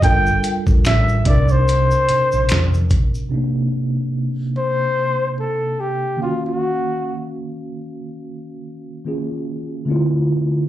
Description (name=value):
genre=R&B, neo-soul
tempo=73 BPM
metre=4/4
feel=swing 58% on 16ths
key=C minor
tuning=A4 = 440 Hz
part: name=mellow flugelhorn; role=melody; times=0.0-7.2 s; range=F4 to G5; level=-19 LUFS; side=left 1 dB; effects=slapback echo
part: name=mellow tine electric piano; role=accompaniment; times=0.0-10.7 s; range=C3 to F5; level=-22 LUFS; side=equal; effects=medium stereo tremolo, slapback echo
part: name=hollow-body short-scale fingered electric bass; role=bass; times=0.0-3.1 s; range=G1 to F2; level=-18 LUFS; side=equal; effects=none
part: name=dusty soul sampler-style drum kit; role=drums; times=0.0-3.1 s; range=hi-hat, kick drum, snare drum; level=-18 LUFS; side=equal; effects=none
part: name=egg shaker and finger snaps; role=percussion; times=0.0-3.3 s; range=none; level=-31 LUFS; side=left 2 dB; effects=none
room=little or no reverb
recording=live gig heard through the venue's PA, club reverb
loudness=-16 LUFS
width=side -13 dB against mid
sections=0.0-3.3 A section; 3.3-10.7 B section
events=none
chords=0.0 Gm9; 1.3 Cm9; 6.2 Ebm9; 9.9 Dm9